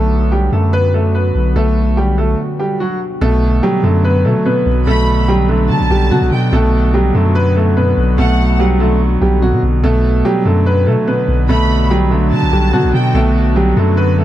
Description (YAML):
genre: hip hop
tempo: 145 BPM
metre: 4/4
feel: half-time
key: B minor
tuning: A4 = 439 Hz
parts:
  - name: warm concert grand piano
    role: melody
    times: 0.0-14.2 s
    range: F#3 to B4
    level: -17 LUFS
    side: right 1 dB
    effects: none
  - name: deep dark ambient pad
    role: sustained chords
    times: 0.0-14.2 s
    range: D3 to F#4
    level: -22 LUFS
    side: equal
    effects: chorus, built-in reverb
  - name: long sustained 808-style bass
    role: bass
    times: 0.0-14.2 s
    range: B1 to D3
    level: -14 LUFS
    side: equal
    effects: none
  - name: felt-muted upright piano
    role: accompaniment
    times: 3.2-14.2 s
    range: B2 to F#3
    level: -17 LUFS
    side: right 1 dB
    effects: none
  - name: warm studio violin section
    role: second line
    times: 4.9-8.6, 11.5-13.1 s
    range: F#5 to B5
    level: -22 LUFS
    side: right 1 dB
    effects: ping-pong delay
room: little or no reverb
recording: dark, warm production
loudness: -11 LUFS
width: side -13 dB against mid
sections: 0.0-3.2 A section; 3.2-14.2 B section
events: break 2.4-3.2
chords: 0.0 Bm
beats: 0.32 0.73 1.15 | 1.56 1.97 2.39 2.80 | 3.21 3.63 4.04 4.46 | 4.87 5.28 5.70 6.11 | 6.53 6.94 7.35 7.77 | 8.18 8.59 9.01 9.42 | 9.84 10.25 10.66 11.08 | 11.49 11.90 12.32 12.73 | 13.15 13.56 13.97